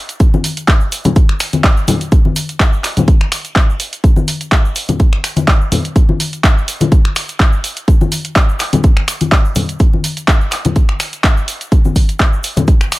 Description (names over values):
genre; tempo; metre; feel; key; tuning
house; 125 BPM; 4/4; swing 54% on 16ths; none; none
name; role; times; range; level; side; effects
punchy analog drum machine; drums; 0.1-13.0 s; finger snaps, handclaps, hi-hat; -18 LUFS; equal; sidechain pumping on hats
tube shaker and congas; percussion; 0.1-13.0 s; none; -17 LUFS; left 3 dB; sidechain pumping on perc
electronic kick drum; drums; 0.2-12.8 s; none; -10 LUFS; equal; none
room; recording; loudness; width
little or no reverb; none; -11 LUFS; side -19 dB against mid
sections
0.0-13.0 A section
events
none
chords
none